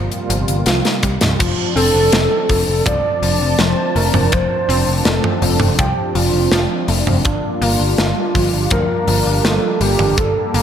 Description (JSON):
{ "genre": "synthwave", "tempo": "82 BPM", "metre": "4/4", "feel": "straight", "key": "unclear", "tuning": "A4 = 442 Hz", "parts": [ { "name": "warm velvety synth lead", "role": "melody", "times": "0.0-10.6 s", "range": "D4 to D5", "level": "-19 LUFS", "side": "right 1 dB", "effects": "chorus, digital delay, slapback echo" }, { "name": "warm analog pad", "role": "sustained chords", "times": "0.0-10.6 s", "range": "C3 to A5", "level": "-22 LUFS", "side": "equal", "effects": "chorus, sidechain pumping" }, { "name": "wide unison pluck", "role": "arpeggios", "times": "0.0-10.6 s", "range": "F3 to C4", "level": "-24 LUFS", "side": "left 2 dB", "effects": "tape echo" }, { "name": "picked electric bass", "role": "bass", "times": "0.0-10.6 s", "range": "F1 to D2", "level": "-19 LUFS", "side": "equal", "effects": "none" }, { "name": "tight metal drum kit", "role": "drums", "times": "0.1-10.6 s", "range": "crash cymbal, hi-hat, snare drum, toms", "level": "-19 LUFS", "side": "equal", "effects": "none" }, { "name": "kick drum", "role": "drums", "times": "1.0-10.3 s", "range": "none", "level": "-22 LUFS", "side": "equal", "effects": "none" } ], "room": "moderate lush hall reverb, RT60 1.7 s", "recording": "big arena sound", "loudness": "-13 LUFS", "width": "side -9 dB against mid", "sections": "0.0-1.4 A section; 1.4-10.6 B section", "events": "drum fill 0.7-1.4", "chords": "0.0 C7sus4; 1.4 F6; 7.2 Gm7" }